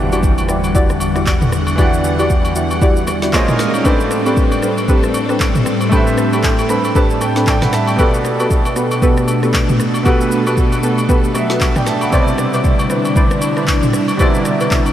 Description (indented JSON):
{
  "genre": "amapiano",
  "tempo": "116 BPM",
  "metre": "4/4",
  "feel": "swing 58% on 16ths",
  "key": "unclear",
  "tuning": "A4 = 439 Hz",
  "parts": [
    { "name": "bright grand piano", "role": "accompaniment", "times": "0.0-14.9 s", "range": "B2 to B5", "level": "-20 LUFS", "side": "right 1 dB", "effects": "lush chorus" },
    { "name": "string machine, violas", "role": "sustained chords", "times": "0.0-14.9 s", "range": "E2 to F#5", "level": "-18 LUFS", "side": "equal", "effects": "phaser, ensemble chorus" },
    { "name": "deep mellow chord stab", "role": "stabs", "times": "0.0-14.7 s", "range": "B3 to D5", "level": "-19 LUFS", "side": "left 1 dB", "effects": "chorus, diffuse ambient delay" },
    { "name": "impact", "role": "sound effects", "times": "0.0-1.8 s", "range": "none", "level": "-25 LUFS", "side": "equal", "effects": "none" },
    { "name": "deep house drum kit", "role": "drums", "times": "0.1-14.9 s", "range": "handclaps, kick drum, rim click, shaker, snare drum, toms", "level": "-17 LUFS", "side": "equal", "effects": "none" },
    { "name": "agogo bells and woodblock", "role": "percussion", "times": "0.1-14.9 s", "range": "none", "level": "-26 LUFS", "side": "left 1 dB", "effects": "none" }
  ],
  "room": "moderate huge ambient reverb, RT60 8.3 s",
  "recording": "dreamy mix soaked in reverb",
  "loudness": "-12 LUFS",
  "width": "side -11 dB against mid",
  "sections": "0.0-14.9 A section",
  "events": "impact 0.0-1.8; grand piano fill 6.4-8.0",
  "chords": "0.0 Em9; 3.3 A#m11; 3.9 Am11; 8.0 Gmaj9/B; 12.1 Cmaj9"
}